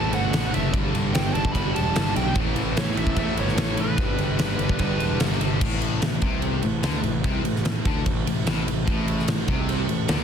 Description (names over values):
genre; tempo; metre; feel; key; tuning
hard rock; 148 BPM; 4/4; straight; unclear; A4 = 439 Hz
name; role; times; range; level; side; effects
bluesy overdriven lead guitar; melody; 0.0-5.2 s; B4 to B5; -30 LUFS; right 3 dB; distortion
bright tonewheel organ; sustained chords; 0.0-10.2 s; G3 to B4; -38 LUFS; right 1 dB; none
crunchy overdriven guitar; riff; 0.0-5.6, 8.9-10.2 s; G2 to A3; -32 LUFS; right 12 dB; none
distorted electric guitar; riff; 0.0-10.2 s; G2 to A3; -32 LUFS; left 13 dB; overdrive
distorted electric guitar; riff; 0.0-10.2 s; G2 to A3; -32 LUFS; equal; overdrive
fuzz picked electric bass; bass; 0.0-10.2 s; E1 to D2; -27 LUFS; equal; overdrive
huge arena drum kit; drums; 0.1-10.2 s; crash cymbal, kick drum, ride cymbal, snare drum; -24 LUFS; equal; none
room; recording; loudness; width
small room ambience; dense, heavily limited modern master; -21 LUFS; side -8 dB against mid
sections
0.0-5.6 A section; 5.6-10.2 B section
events
none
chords
0.0 A5; 0.7 G5; 2.4 A; 4.0 G; 5.6 A5